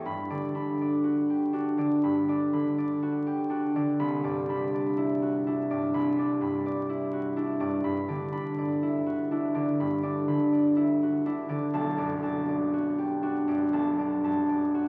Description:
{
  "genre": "classical, solo harp piece",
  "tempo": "61 BPM",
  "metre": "4/4",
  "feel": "rubato",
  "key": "G major",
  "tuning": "A4 = 440 Hz",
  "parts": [
    { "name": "concert harp", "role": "solo", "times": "0.0-14.9 s", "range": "B1 to B5", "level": "-28 LUFS", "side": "equal", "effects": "none" }
  ],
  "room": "wet church reverb, RT60 3.5 s",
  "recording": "very old 78 rpm record, vinyl crackle",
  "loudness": "-28 LUFS",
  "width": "mono",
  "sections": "0.0-14.9 A section",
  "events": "none",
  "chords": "0.1 Gmaj7; 4.0 Cmaj9; 7.9 G6; 11.8 Bm7"
}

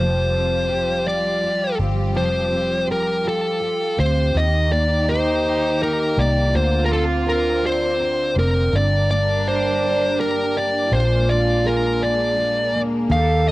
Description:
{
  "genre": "six-eight pop ballad",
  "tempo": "55 BPM (dotted quarters)",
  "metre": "6/8",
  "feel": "straight",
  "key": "Bb major",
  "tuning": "A4 = 440 Hz",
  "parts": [
    { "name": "fuzz lead guitar", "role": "melody", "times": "0.0-13.5 s", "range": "A4 to F5", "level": "-20 LUFS", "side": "equal", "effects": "distortion, cassette tape" },
    { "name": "picked steel-string acoustic guitar", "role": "accompaniment", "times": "0.0-13.5 s", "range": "G2 to Bb4", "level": "-26 LUFS", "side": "equal", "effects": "double-tracked left and right, cassette tape" },
    { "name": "clear studio string section", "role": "sustained chords", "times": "0.0-13.5 s", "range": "D3 to Bb4", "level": "-30 LUFS", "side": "equal", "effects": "cassette tape" },
    { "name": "vintage muted fingered electric bass", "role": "bass", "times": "0.0-13.5 s", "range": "F1 to Eb2", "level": "-22 LUFS", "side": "equal", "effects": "none" },
    { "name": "warm French horn section", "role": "second line", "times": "4.4-13.5 s", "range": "D4 to A4", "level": "-25 LUFS", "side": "right 2 dB", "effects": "cassette tape" }
  ],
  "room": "little or no reverb",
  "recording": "home recording on cassette",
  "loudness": "-17 LUFS",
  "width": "side -18 dB against mid",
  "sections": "0.0-4.3 A section; 4.3-13.5 B section",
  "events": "none",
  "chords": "0.0 Fsus2; 4.3 Eb; 6.5 Bbadd9/D; 8.7 Gm; 10.9 Bb7"
}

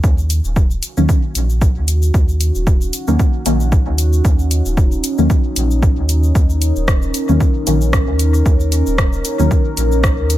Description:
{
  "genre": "dub techno",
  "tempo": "114 BPM",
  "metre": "4/4",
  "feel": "swing 55% on 16ths",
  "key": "Eb minor",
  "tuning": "A4 = 438 Hz",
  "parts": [
    { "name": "dark analog pad", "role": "sustained chords", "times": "1.5-10.4 s", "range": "Db4 to Bb4", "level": "-23 LUFS", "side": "equal", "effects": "chorus, phaser, vintage 12-bit sampler grit, sidechain pumping" },
    { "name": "warm sub bass", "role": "bass", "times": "0.0-10.4 s", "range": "Eb1 to Eb2", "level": "-16 LUFS", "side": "equal", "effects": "sidechain pumping" },
    { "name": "deep house drum kit", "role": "drums", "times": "0.0-10.4 s", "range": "hi-hat, rim click, shaker", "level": "-23 LUFS", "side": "left 1 dB", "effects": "none" },
    { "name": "electronic kick drum", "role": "drums", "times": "0.0-10.2 s", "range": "none", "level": "-14 LUFS", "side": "equal", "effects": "none" },
    { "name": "deep mellow chord stab", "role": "stabs", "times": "1.0-9.5 s", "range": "Eb3 to Db4", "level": "-19 LUFS", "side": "left 1 dB", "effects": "chorus, phaser, dub echo" }
  ],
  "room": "little or no reverb",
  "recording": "none",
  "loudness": "-13 LUFS",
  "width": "side -14 dB against mid",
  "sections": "0.0-10.4 A section",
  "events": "none",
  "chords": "0.0 Ebm7"
}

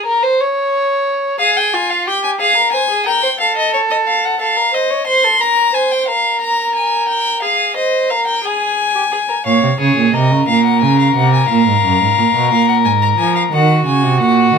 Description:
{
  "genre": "classical, baroque-style fugue for string quartet",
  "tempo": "59 BPM (dotted quarters)",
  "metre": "12/8",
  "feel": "straight",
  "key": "Bb minor",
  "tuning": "A4 = 440 Hz",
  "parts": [
    { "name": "dark violin", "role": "second line", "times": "0.0-14.6 s", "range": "F4 to Db5", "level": "-16 LUFS", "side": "left 2 dB", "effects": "none" },
    { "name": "rich violin", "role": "melody", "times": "1.4-14.6 s", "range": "Db5 to C6", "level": "-16 LUFS", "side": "left 3 dB", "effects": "none" },
    { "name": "rich cello", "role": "bass", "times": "9.5-14.6 s", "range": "Gb2 to F3", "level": "-13 LUFS", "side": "right 5 dB", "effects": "none" }
  ],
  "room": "light reverb",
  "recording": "minimal, uncompressed stereo recording",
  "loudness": "-12 LUFS",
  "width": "side -6 dB against mid",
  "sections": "0.0-9.5 A section; 9.5-14.6 B section",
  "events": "none",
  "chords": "0.0 N.C.; 1.4 Fm; 3.4 F7/A; 5.4 Bb5; 7.4 Fm/Ab; 9.5 Bbm; 11.5 Bb5; 13.5 Ebm"
}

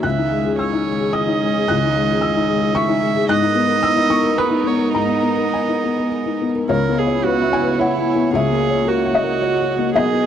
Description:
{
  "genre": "neoclassical piano and strings",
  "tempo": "110 BPM",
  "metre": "3/4",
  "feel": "rubato",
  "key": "unclear",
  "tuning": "A4 = 440 Hz",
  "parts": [
    { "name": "felt-muted upright piano", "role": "accompaniment", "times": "0.0-10.3 s", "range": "B1 to F#6", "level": "-18 LUFS", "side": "left 4 dB", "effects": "none" },
    { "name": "warm viola", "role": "accompaniment", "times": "0.0-10.3 s", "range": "E4 to E5", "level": "-20 LUFS", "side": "right 7 dB", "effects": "none" },
    { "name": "warm chamber string section", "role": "sustained chords", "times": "0.0-10.3 s", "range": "D#3 to C#5", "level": "-25 LUFS", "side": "right 5 dB", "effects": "none" }
  ],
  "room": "little or no reverb",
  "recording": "dry, close 1970s-style studio recording",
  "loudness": "-16 LUFS",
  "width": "side -9 dB against mid",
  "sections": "0.0-6.7 A section; 6.7-10.3 B section",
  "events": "none",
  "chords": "0.0 C#madd9; 3.3 G#madd9; 6.7 C#m7; 8.3 F#7/C#"
}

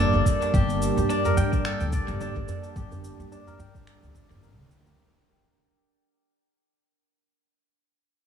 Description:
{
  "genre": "organic downtempo",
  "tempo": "108 BPM",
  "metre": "4/4",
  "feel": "swing 56% on 16ths",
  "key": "G minor",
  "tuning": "A4 = 440 Hz",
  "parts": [
    { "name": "warm analog pad", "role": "sustained chords", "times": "0.0-4.9 s", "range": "G3 to A5", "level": "-30 LUFS", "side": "right 3 dB", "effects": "chorus, sidechain pumping" },
    { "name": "steel-string zither", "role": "arpeggios", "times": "0.0-7.1 s", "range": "D4 to G5", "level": "-28 LUFS", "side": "left 1 dB", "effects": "low-pass filter, dub echo" },
    { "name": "upright bass", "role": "bass", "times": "0.0-4.9 s", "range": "G1 to G2", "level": "-27 LUFS", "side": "equal", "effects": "none" },
    { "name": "djembe", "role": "percussion", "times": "0.1-5.0 s", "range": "none", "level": "-35 LUFS", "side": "left 4 dB", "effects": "none" },
    { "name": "electronic kick drum", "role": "drums", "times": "0.3-4.8 s", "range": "none", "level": "-26 LUFS", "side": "equal", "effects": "none" },
    { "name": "electronic shaker and finger snaps", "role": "drums", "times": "0.3-5.0 s", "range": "none", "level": "-40 LUFS", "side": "right 1 dB", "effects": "dub echo" }
  ],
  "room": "light reverb, small room ambience",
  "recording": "echo-heavy mix, studio ambience",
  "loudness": "-22 LUFS",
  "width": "side -8 dB against mid",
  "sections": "0.0-5.0 A section",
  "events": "fade-out 0.0-5.0; filter sweep on guzheng 0.0-5.0",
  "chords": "0.0 Gmadd9"
}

